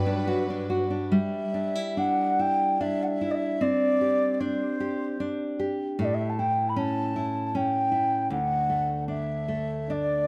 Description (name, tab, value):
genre	celtic folk, Celtic slow air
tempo	69-79 BPM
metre	3/4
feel	rubato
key	G major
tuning	A4 = 441 Hz
part	mellow baroque flute	melody	0.0-10.3 s	C5 to B5	-29 LUFS	equal	none
part	nylon-string guitar	accompaniment	0.0-10.3 s	D2 to G4	-30 LUFS	equal	none
part	warm chamber string section	sustained chords	0.0-1.1 s	F#3 to B4	-36 LUFS	equal	none
room	moderate recital hall reverb, RT60 1.8 s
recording	none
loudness	-27 LUFS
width	mono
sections	0.0-1.1 A section; 1.1-10.3 B section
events	none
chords	0.0 Gmaj7; 1.1 G5; 3.6 Csus2; 6.0 A7; 8.3 D